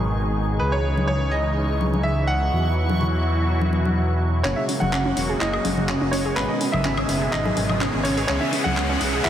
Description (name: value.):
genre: progressive house.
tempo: 125 BPM.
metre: 4/4.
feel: straight.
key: C# dorian.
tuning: A4 = 439 Hz.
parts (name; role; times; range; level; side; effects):
filtered supersaw swell; sustained chords; 0.0-9.3 s; B2 to G#4; -26 LUFS; right 1 dB; wide subtle chorus.
dark detuned saw bass; bass; 0.0-9.3 s; E1 to E2; -24 LUFS; equal; none.
backwards swelling texture; texture; 0.0-9.3 s; G#5 to C#6; -37 LUFS; equal; built-in reverb, wide subtle chorus.
bright concert grand piano; melody; 0.6-9.3 s; B4 to F#5; -27 LUFS; right 1 dB; vintage 12-bit sampler grit, low-pass filter, tape echo.
congas; percussion; 1.0-8.7 s; none; -28 LUFS; left 3 dB; none.
wide unison pluck; arpeggios; 4.4-9.3 s; C#3 to G#4; -26 LUFS; equal; tape echo.
deep house drum kit; drums; 4.4-9.3 s; handclaps, hi-hat, woodblock; -28 LUFS; equal; overdrive, high-pass filter on snare, low-pass filter on snare, high-pass filter on hats, low-pass filter on hats, high-pass filter on perc, low-pass filter on perc, high-pass filter on room, low-pass filter on room.
riser; sound effects; 6.2-9.3 s; none; -32 LUFS; left 1 dB; none.
room: moderate huge ambient reverb, RT60 6.5 s.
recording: dreamy mix soaked in reverb.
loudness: -19 LUFS.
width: side -10 dB against mid.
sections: 0.0-4.4 A section; 4.4-9.3 B section.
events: filter sweep on supersaw synth 0.0-4.4; build-up 4.4-9.3; drum fill 4.4-9.3; filter sweep on synth pluck 4.4-9.3; filter sweep on grand piano 4.4-9.3; filter sweep 4.4-9.3; riser 6.2-9.3.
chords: 0.0 G#m; 0.6 C#madd9; 2.5 Esus2; 4.4 F#add9; 6.4 G#m; 8.3 C#m.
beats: 0.13 | 0.61 1.09 1.57 2.05 | 2.53 3.01 3.49 3.97 | 4.45 4.93 5.41 5.89 | 6.37 6.85 7.33 7.81 | 8.29 8.77 9.25.